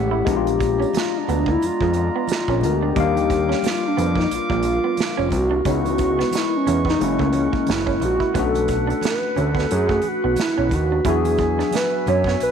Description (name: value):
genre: R&B, neo-soul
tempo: 89 BPM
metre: 4/4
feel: swing 57% on 16ths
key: unclear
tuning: A4 = 440 Hz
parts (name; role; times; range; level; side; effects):
- hollow square lead; melody; 0.0-12.5 s; C#4 to C#5; -22 LUFS; equal; chorus
- tine electric piano; accompaniment; 0.0-12.5 s; F#3 to E#5; -26 LUFS; left 13 dB; medium stereo tremolo
- warm woodwind section; sustained chords; 0.0-12.5 s; G3 to D6; -29 LUFS; right 2 dB; none
- fat analog bass; bass; 0.0-12.5 s; E#1 to F#2; -23 LUFS; equal; none
- electric guitar through a small old amp; second line; 0.1-12.4 s; G3 to E4; -28 LUFS; right 13 dB; warbly pitch drift
- unplugged drum kit; drums; 0.3-12.5 s; hi-hat, kick drum, snare drum; -27 LUFS; right 3 dB; none
- congas; percussion; 0.3-12.2 s; none; -37 LUFS; right 9 dB; none
room: light reverb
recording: 1960s-style stereo with parts hard left and right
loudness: -18 LUFS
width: side -7 dB against mid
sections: 0.0-12.5 A section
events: none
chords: 0.3 A#7b9; 3.0 D#maj9; 5.7 C#m9; 7.0 F#7; 8.4 Bm7; 11.1 E9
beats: | 0.26 0.94 1.61 2.29 | 2.96 3.63 4.31 4.98 | 5.66 6.33 7.01 7.68 | 8.35 9.03 9.70 10.38 | 11.05 11.72 12.40